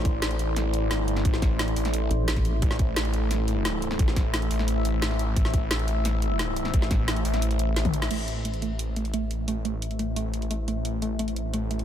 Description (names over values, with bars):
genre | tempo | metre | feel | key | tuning
dark technical drum and bass | 175 BPM | 4/4 | straight | A minor | A4 = 438 Hz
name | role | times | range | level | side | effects
deep dark ambient pad | sustained chords | 0.0-11.8 s | A3 to E5 | -31 LUFS | left 2 dB | chorus, built-in reverb, sidechain pumping
snarling distorted saw bass | bass | 0.0-11.8 s | A1 | -27 LUFS | equal | distortion, tube saturation
drum and bass drum kit | drums | 0.1-11.8 s | crash cymbal, hi-hat, snare drum, toms | -31 LUFS | equal | none
electronic kick drum | drums | 0.1-7.9 s | none | -24 LUFS | equal | none
vowel-sweep wobble bass | bass | 2.1-2.6 s | A1 | -24 LUFS | equal | chorus
warbly dusty pluck | arpeggios | 8.1-11.8 s | A3 | -32 LUFS | right 4 dB | chorus, sidechain pumping, dub echo
room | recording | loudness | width
little or no reverb | none | -23 LUFS | side -10 dB against mid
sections
0.0-8.1 A section; 8.1-11.8 B section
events
drop 0.0-8.1; drum fill 7.8-8.1; band accent 8.0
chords
0.0 Am